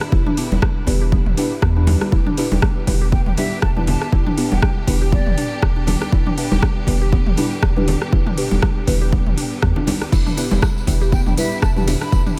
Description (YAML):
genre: afro house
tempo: 120 BPM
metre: 4/4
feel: swing 56% on 16ths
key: E minor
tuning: A4 = 439 Hz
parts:
  - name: clear studio string section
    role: sustained chords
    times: 0.0-12.4 s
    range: D3 to G4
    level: -32 LUFS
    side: equal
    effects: sidechain pumping
  - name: deep house drum kit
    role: drums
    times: 0.0-12.4 s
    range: crash cymbal, hi-hat, rim click, toms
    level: -27 LUFS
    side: equal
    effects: overdrive
  - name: mallet-like synth pluck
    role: arpeggios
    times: 0.1-12.4 s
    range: B3 to B4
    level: -30 LUFS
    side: equal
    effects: subtle chorus, sidechain pumping, tape echo
  - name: warm sub bass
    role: bass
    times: 0.1-12.2 s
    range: E1 to E2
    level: -22 LUFS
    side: equal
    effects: tube saturation, sidechain pumping
  - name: electronic kick drum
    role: drums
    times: 0.1-12.2 s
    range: none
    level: -21 LUFS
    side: equal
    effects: overdrive
  - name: deep mellow chord stab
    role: stabs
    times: 0.4-11.9 s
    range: B3 to B4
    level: -30 LUFS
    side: equal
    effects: chorus, phaser, sidechain pumping, tape echo
  - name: congas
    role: percussion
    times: 0.5-12.0 s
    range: none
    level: -27 LUFS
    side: equal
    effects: none
  - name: breathy hollow jazz flute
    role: melody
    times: 3.1-5.6, 11.1-12.2 s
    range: D5 to B5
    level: -33 LUFS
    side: equal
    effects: tape echo
  - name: tambourine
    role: percussion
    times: 10.1-12.4 s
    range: none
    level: -36 LUFS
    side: equal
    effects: none
room: small room ambience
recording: none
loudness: -18 LUFS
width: mono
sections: 0.0-12.4 A section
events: none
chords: 0.0 Em7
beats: | 0.12 0.62 1.12 1.62 | 2.12 2.62 3.12 3.62 | 4.12 4.62 5.12 5.62 | 6.12 6.62 7.12 7.62 | 8.12 8.62 9.12 9.62 | 10.12 10.62 11.12 11.62 | 12.12